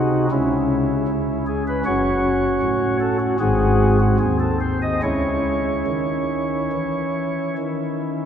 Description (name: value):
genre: classical, chorale-style piece for pipe organ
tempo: 70-79 BPM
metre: 4/4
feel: rubato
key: C# minor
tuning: A4 = 440 Hz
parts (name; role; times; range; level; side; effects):
- pipe organ, flutes; solo; 0.0-8.3 s; F#1 to D#5; -18 LUFS; equal; none
room: wet church reverb, RT60 3.4 s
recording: heard from further back in the room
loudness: -18 LUFS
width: side -8 dB against mid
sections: 0.0-8.3 A section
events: none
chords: 0.3 N.C.; 1.9 F#m; 3.4 G#7; 5.0 C#m